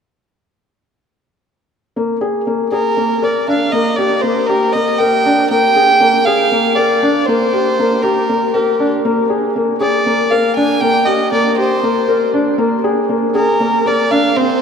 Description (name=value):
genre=contemporary instrumental, contemporary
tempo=237 BPM (eighths)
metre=7/8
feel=straight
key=Bb mixolydian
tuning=A4 = 436 Hz
part: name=felt-muted upright piano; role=arpeggios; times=2.0-14.6 s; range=Bb3 to Bb4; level=-14 LUFS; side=left 2 dB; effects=none
part: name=rich violin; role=melody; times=2.7-14.6 s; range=G4 to Ab5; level=-15 LUFS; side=right 2 dB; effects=none
room=wet cathedral reverb, RT60 6.2 s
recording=in a vast, echoing space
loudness=-12 LUFS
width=side -6 dB against mid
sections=2.0-14.6 A section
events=none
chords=2.0 Bb7(no3); 3.7 Bb5; 5.5 Bb7; 7.3 C5/Bb; 9.0 Bb7; 10.8 C5/Bb; 12.6 Bb7(no3)